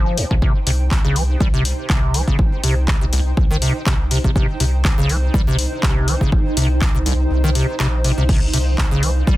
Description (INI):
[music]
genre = acid house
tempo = 122 BPM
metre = 4/4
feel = swing 54% on 16ths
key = C minor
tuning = A4 = 439 Hz
[part]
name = acid bass, square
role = riff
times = 0.0-9.3 s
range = C2 to G3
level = -21 LUFS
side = equal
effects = tube saturation, wide subtle chorus, sidechain pumping, digital delay
[part]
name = warm sub bass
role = bass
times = 0.0-9.4 s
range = G1 to C2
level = -20 LUFS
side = equal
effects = sidechain pumping
[part]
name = granular cloud pad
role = texture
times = 0.1-9.4 s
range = Eb4 to G5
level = -28 LUFS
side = right 1 dB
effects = built-in reverb, sidechain pumping
[part]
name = punchy analog drum machine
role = drums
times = 0.2-9.1 s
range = crash cymbal, handclaps, hi-hat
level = -24 LUFS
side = left 2 dB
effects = none
[part]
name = electronic kick drum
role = drums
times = 0.3-9.4 s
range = none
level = -17 LUFS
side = equal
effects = none
[sound]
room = light reverb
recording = dense, heavily limited modern master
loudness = -15 LUFS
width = side -16 dB against mid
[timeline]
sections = 0.0-9.4 A section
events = kick drops out 7.3-8.3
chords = 0.0 Cm